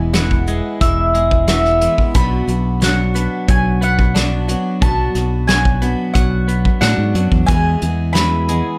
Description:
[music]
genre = folk rock and heartland rock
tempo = 90 BPM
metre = 4/4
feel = straight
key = unclear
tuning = A4 = 440 Hz
[part]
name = mandolin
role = melody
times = 0.0-8.8 s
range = E5 to B5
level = -22 LUFS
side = equal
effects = plate reverb, tape echo
[part]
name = picked steel-string acoustic guitar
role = accompaniment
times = 0.0-8.8 s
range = E2 to G#4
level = -27 LUFS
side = equal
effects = none
[part]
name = twelve-string electric guitar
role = riff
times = 0.0-8.8 s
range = E2 to D4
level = -25 LUFS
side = equal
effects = none
[part]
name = fingered electric bass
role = bass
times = 0.0-8.6 s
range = E1 to A2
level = -20 LUFS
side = equal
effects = none
[part]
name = soft brush drum kit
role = drums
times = 0.1-8.6 s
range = hi-hat, kick drum, snare drum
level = -19 LUFS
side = equal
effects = none
[sound]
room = light reverb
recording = none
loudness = -16 LUFS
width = mono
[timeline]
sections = 0.0-8.8 A section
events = none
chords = 0.0 E; 2.1 Bm; 7.5 E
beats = 0.14 0.81 1.48 | 2.14 2.81 3.48 4.15 | 4.81 5.48 6.15 6.82 | 7.48 8.15

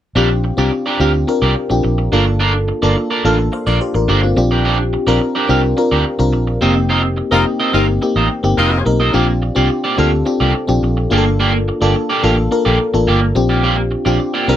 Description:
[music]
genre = pop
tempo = 107 BPM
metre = 4/4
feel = straight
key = Bb major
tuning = A4 = 440 Hz
[part]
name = FM electric piano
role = accompaniment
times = 0.2-14.6 s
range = Bb3 to F5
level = -17 LUFS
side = left 2 dB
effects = lush chorus
[part]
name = electric guitar at the edge of break-up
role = riff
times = 0.2-14.6 s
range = Bb3 to F5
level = -18 LUFS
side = right 3 dB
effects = wide subtle chorus
[part]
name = vintage muted fingered electric bass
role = bass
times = 0.2-14.6 s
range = F1 to D2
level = -17 LUFS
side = equal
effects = none
[part]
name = warm horn section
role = second line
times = 7.3-8.8 s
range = Eb4 to Bb4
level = -17 LUFS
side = left 3 dB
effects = none
[sound]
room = little or no reverb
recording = none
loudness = -13 LUFS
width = side -11 dB against mid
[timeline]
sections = 0.2-14.6 A section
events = band accent 6.9-9.1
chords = 0.2 Bb6; 2.1 Gm7; 4.4 Bb6; 6.6 F7sus4; 9.1 Bb6; 11.1 Gm7; 13.4 Bb6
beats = | 0.15 0.71 1.28 1.84 | 2.40 2.96 3.52 4.08 | 4.65 5.21 5.77 6.33 | 6.89 7.46 8.02 8.58 | 9.14 9.70 10.26 10.83 | 11.39 11.95 12.51 13.07 | 13.64 14.20

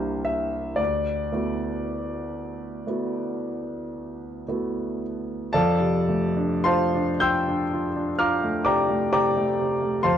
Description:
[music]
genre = classical, impressionist solo piano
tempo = 34-44 BPM (dotted quarters)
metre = 9/8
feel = rubato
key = D major, F major from 5.5 s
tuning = A4 = 441 Hz
[part]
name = warm grand piano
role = solo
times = 0.0-10.2 s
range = C2 to G6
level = -22 LUFS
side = equal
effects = none
[sound]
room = light reverb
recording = dark, warm production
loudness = -22 LUFS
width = side -9 dB against mid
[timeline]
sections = 0.0-5.5 A section; 5.5-10.2 B section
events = none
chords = 0.0 C9; 0.8 D69; 5.5 F69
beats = | 0.79 2.36 3.93 | 5.53 7.20 8.66 | 10.05

